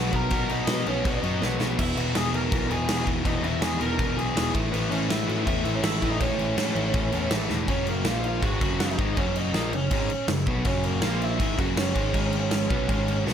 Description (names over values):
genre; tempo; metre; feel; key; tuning
punk rock; 162 BPM; 4/4; straight; unclear; A4 = 437 Hz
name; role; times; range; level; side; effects
bluesy overdriven lead guitar; melody; 0.0-13.2 s; A#3 to A#5; -30 LUFS; right 1 dB; distortion
biting overdriven guitar; riff; 0.0-13.3 s; E2 to B3; -30 LUFS; left 9 dB; none
overdriven electric guitar; riff; 0.0-13.3 s; E2 to B3; -31 LUFS; right 11 dB; none
picked electric bass; bass; 0.0-13.3 s; E1 to B2; -30 LUFS; equal; none
big rock drum kit; drums; 0.1-13.3 s; crash cymbal, kick drum, snare drum; -28 LUFS; equal; none
room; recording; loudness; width
little or no reverb; none; -23 LUFS; side -8 dB against mid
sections
0.0-7.7 A section; 7.7-13.3 B section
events
drum fill 1.4-1.8, 7.5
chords
0.0 B; 1.8 E; 4.5 A; 7.7 F#; 8.1 A#5; 8.4 F#; 11.0 A#5; 11.4 F#5; 12.1 G#5; 12.7 F#5; 12.9 G#5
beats
| 0.31 0.68 1.05 1.41 | 1.78 2.15 2.52 2.89 | 3.25 3.62 3.99 4.36 | 4.73 5.10 5.47 5.84 | 6.21 6.58 6.95 7.32 | 7.68 8.06 8.43 8.80 | 9.17 9.54 9.91 10.28 | 10.66 11.03 11.40 11.77 | 12.14 12.52 12.89 13.27